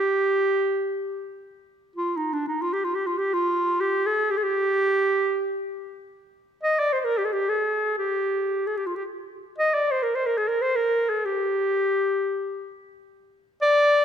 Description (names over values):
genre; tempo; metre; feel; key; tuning
Arabic maqam ensemble; free time; none; none; G maqam bayati; A4 = 440 Hz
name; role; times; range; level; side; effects
warm clarinet; solo; 0.0-14.0 s; D4 to Eb5; -22 LUFS; equal; none
room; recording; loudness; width
moderate concert hall reverb, RT60 2.3 s; none; -22 LUFS; side -8 dB against mid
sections
0.0-14.0 A section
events
none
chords
none